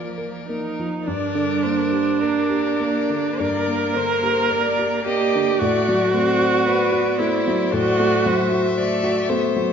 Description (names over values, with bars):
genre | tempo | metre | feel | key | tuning
classical, slow romantic movement for piano quintet | 49-58 BPM | 4/4 | rubato | G minor | A4 = 440 Hz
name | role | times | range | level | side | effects
warm violin | melody | 0.0-9.7 s | Bb4 to Eb5 | -26 LUFS | left 8 dB | none
rich cello | second line | 0.0-9.7 s | F3 to C4 | -29 LUFS | right 5 dB | none
warm violin | second line | 0.0-9.7 s | Bb4 to E5 | -29 LUFS | left 3 dB | none
rich viola | accompaniment | 0.0-8.8 s | Bb3 to Bb4 | -21 LUFS | right 3 dB | none
warm concert grand piano | accompaniment | 0.0-9.7 s | G2 to C5 | -24 LUFS | left 1 dB | none
room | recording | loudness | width
moderate recital hall reverb, RT60 1.3 s | nothing above 7.6 kHz, faint mains hum | -18 LUFS | side -7 dB against mid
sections
0.0-1.1 A section; 1.1-9.7 B section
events
none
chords
0.0 Bb; 1.1 Gm; 5.6 F#dim/A